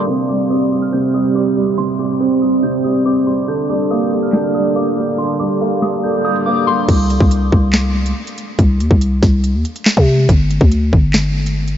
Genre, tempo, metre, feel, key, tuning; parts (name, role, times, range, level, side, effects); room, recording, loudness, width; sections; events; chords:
hip hop, drill; 141 BPM; 4/4; half-time; C minor; A4 = 441 Hz
soft synth bell; melody; 0.0-6.9 s; C6 to G6; -25 LUFS; left 2 dB; chorus, phaser, analog delay
dark baby grand piano; accompaniment; 0.0-6.9 s; C3 to C4; -15 LUFS; right 2 dB; lush chorus, low-pass filter
drill drum kit; drums; 0.1-11.8 s; crash cymbal, handclaps, hi-hat, kick drum, snare drum; -15 LUFS; equal; overdrive
growling 808-style bass; bass; 6.9-11.8 s; G1 to C3; -14 LUFS; equal
wet huge ambient reverb, RT60 5.0 s; dreamy mix soaked in reverb, low-pass filter, nothing above 7.7 kHz; -13 LUFS; side -10 dB against mid
0.1-6.9 A section; 6.9-11.8 B section
filter sweep 0.1-6.9
0.1 C5; 3.5 Gm; 6.9 N.C.; 10.3 G5